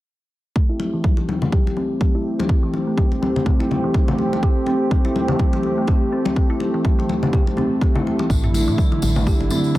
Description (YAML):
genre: afro house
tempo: 124 BPM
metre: 4/4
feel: swing 56% on 16ths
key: A minor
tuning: A4 = 440 Hz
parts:
  - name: warm analog pad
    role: sustained chords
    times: 0.6-9.8 s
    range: D3 to G4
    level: -23 LUFS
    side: right 2 dB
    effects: chorus, sidechain pumping
  - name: kalimba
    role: arpeggios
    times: 0.6-9.8 s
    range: E3 to G4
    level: -24 LUFS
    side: left 1 dB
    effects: sidechain pumping, low-pass filter, diffuse ambient delay
  - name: electronic kick drum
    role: drums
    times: 0.6-9.8 s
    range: none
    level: -18 LUFS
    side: equal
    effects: overdrive
  - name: congas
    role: percussion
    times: 0.8-9.8 s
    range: none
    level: -26 LUFS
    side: left 4 dB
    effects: none
  - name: woody FM bass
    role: bass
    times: 8.3-9.5 s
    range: G1 to A2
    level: -21 LUFS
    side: equal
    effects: sidechain pumping
  - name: tambourine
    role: percussion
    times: 8.3-9.8 s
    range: none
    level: -31 LUFS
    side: left 2 dB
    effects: none
  - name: electronic toms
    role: drums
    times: 8.4-9.5 s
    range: none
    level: -28 LUFS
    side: right 1 dB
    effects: none
room: little or no reverb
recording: none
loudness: -17 LUFS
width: side -16 dB against mid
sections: 0.6-9.8 A section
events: filter sweep on kalimba 0.6-9.8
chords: 0.6 Am7; 8.3 D5